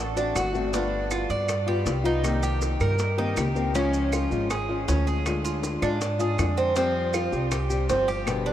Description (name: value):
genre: latin, Cuban son and guajira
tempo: 159 BPM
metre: 4/4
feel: straight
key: unclear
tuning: A4 = 440 Hz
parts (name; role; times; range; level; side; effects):
- Cuban tres; arpeggios; 0.0-8.5 s; C4 to D5; -27 LUFS; right 3 dB; none
- upright bass; bass; 0.0-8.5 s; G1 to Ab2; -28 LUFS; equal; none
- flamenco guitar; accompaniment; 0.2-8.5 s; B2 to G4; -28 LUFS; left 4 dB; none
- bongos; percussion; 0.2-8.5 s; none; -36 LUFS; left 6 dB; none
- maracas; percussion; 0.2-8.5 s; none; -40 LUFS; right 5 dB; none
- claves; percussion; 0.4-8.5 s; none; -40 LUFS; right 4 dB; none
room: moderate huge ambient reverb, RT60 8.1 s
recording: in a vast, echoing space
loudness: -23 LUFS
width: side -11 dB against mid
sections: 0.0-3.8 A section; 3.8-8.5 B section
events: none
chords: 0.0 D7; 0.7 G7; 2.2 Cm7; 3.8 Db; 5.3 Ddim; 6.8 Fsus2